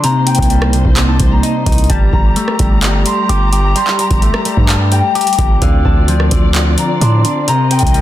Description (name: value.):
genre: hip hop, trap.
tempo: 129 BPM.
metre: 4/4.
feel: half-time.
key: G minor.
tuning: A4 = 440 Hz.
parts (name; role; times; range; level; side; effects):
concert harp; melody; 0.0-8.0 s; F5 to D6; -19 LUFS; left 1 dB; digital delay.
electric guitar with an envelope filter; accompaniment; 0.0-8.0 s; C3 to G4; -18 LUFS; left 3 dB; none.
muted symphonic string section; sustained chords; 0.0-8.0 s; G3 to Bb5; -21 LUFS; right 2 dB; none.
booming analog drum machine; drums; 0.0-8.0 s; handclaps, hi-hat, kick drum, rim click; -14 LUFS; equal; none.
long sustained 808-style bass; bass; 0.4-8.0 s; G1 to A2; -14 LUFS; equal; none.
room: light reverb.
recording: dense, heavily limited modern master.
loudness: -10 LUFS.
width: side -13 dB against mid.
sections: 0.0-8.0 A section.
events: none.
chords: 0.0 Cm7; 1.9 Gmadd9; 5.6 Dm7; 7.5 Cm7.